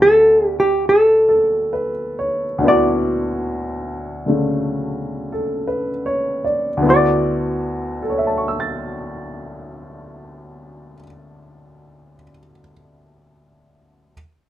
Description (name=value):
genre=jazz ballad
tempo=50-71 BPM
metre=4/4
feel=swing 68% on 8ths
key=D major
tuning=A4 = 440 Hz
part: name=hollow-body jazz guitar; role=melody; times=0.0-11.0 s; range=G4 to D5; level=-13 LUFS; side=equal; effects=none
part: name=warm baby grand piano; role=accompaniment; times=0.0-14.1 s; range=D2 to A6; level=-20 LUFS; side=equal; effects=none
room=light reverb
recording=close, detailed microphones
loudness=-16 LUFS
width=side -12 dB against mid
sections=0.0-6.8 A section; 6.8-11.6 B section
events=slowing down 0.0-6.8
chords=0.0 D6